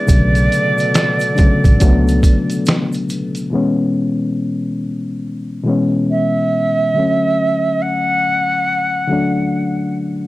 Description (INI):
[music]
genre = lo-fi hip hop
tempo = 70 BPM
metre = 4/4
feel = swing 62% on 16ths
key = unclear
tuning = A4 = 435 Hz
[part]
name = reedy jazz flute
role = melody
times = 0.0-10.0 s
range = D5 to F#5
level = -17 LUFS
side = right 1 dB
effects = none
[part]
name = reed electric piano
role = accompaniment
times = 0.0-10.3 s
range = B2 to E4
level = -17 LUFS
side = left 2 dB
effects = none
[part]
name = dark analog pad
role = sustained chords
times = 0.0-3.5 s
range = B2 to B4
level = -27 LUFS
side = right 1 dB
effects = chorus
[part]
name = vintage muted fingered electric bass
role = bass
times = 0.1-2.2 s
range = A1 to C#2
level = -15 LUFS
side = equal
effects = none
[part]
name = trip hop sampler-style drum kit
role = drums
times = 0.1-3.5 s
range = finger snaps, hi-hat, kick drum, snare drum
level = -14 LUFS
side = equal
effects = none
[part]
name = egg shaker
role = percussion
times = 0.1-3.5 s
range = none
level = -37 LUFS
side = right 5 dB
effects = none
[sound]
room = moderate studio reverb, RT60 0.6 s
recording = cassette tape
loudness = -13 LUFS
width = side -17 dB against mid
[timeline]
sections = 0.0-3.5 A section; 3.5-10.3 B section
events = none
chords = 0.1 Bm9; 3.5 C#m7/B; 6.9 Dmaj7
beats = | 0.09 0.94 1.80 2.66 | 3.52 4.37 5.23 6.09 | 6.95 7.80 8.66 9.52